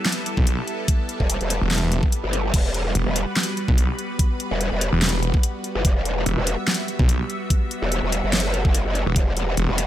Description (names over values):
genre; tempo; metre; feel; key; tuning
heavy wobble dubstep; 145 BPM; 4/4; swing 54% on 16ths, half-time; E minor; A4 = 440 Hz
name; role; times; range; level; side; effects
lush unison pad; sustained chords; 0.0-9.9 s; G3 to E5; -28 LUFS; equal; chorus, phaser, sidechain pumping
dubstep drum kit; drums; 0.1-9.9 s; crash cymbal, handclaps, hi-hat, snare drum; -25 LUFS; equal; overdrive
snarling distorted saw bass; bass; 0.4-9.7 s; E1 to B1; -21 LUFS; equal; distortion, overdrive
electronic kick drum; drums; 0.4-9.2 s; none; -20 LUFS; equal; overdrive
growl bass; bass; 1.2-9.9 s; E1 to G1; -23 LUFS; equal; chorus, overdrive
room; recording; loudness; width
little or no reverb; none; -19 LUFS; side -12 dB against mid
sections
0.0-9.9 A section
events
none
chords
0.0 Em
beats
0.06 0.47 | 0.88 1.30 1.71 2.12 | 2.54 2.95 3.37 3.78 | 4.19 4.61 5.02 5.43 | 5.85 6.26 6.68 7.09 | 7.50 7.92 8.33 8.74 | 9.16 9.57